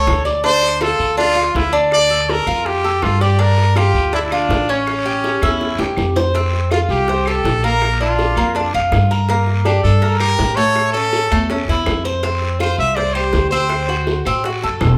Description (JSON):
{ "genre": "latin, Cuban son and guajira", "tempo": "163 BPM", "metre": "4/4", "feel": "straight", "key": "D minor", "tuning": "A4 = 441 Hz", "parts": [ { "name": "brilliant trumpet", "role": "melody", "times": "0.0-14.2 s", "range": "C#4 to E5", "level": "-20 LUFS", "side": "equal", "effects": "none" }, { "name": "Cuban tres", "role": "arpeggios", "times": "0.0-15.0 s", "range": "A3 to D5", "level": "-22 LUFS", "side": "equal", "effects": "none" }, { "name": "upright bass", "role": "bass", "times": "0.0-15.0 s", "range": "E1 to A2", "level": "-21 LUFS", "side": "equal", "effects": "none" }, { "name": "bongos", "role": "percussion", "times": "0.1-15.0 s", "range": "none", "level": "-28 LUFS", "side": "equal", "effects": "none" }, { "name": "claves", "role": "percussion", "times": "0.1-15.0 s", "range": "none", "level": "-34 LUFS", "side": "equal", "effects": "none" }, { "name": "guiro", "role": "percussion", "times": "0.1-15.0 s", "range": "none", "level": "-34 LUFS", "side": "equal", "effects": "none" } ], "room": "moderate large studio reverb, RT60 0.9 s", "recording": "band playing live in one room", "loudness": "-16 LUFS", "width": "mono", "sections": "0.0-6.3 A section; 6.3-15.0 B section", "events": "drum fill 5.2-6.3", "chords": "0.4 Dm7; 1.9 Bbmaj7/D; 3.4 Gm7; 4.9 A7; 6.3 Fadd9; 7.8 Bb; 9.3 Gmadd9; 10.8 A; 12.2 Fsus2; 13.7 D7", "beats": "0.07 | 0.44 0.81 1.18 1.55 | 1.92 2.29 2.66 3.02 | 3.39 3.76 4.13 4.50 | 4.87 5.24 5.60 5.97 | 6.34 6.71 7.08 7.45 | 7.82 8.18 8.55 8.92 | 9.29 9.66 10.03 10.39 | 10.76 11.13 11.50 11.87 | 12.24 12.61 12.97 13.34 | 13.71 14.08 14.45 14.81" }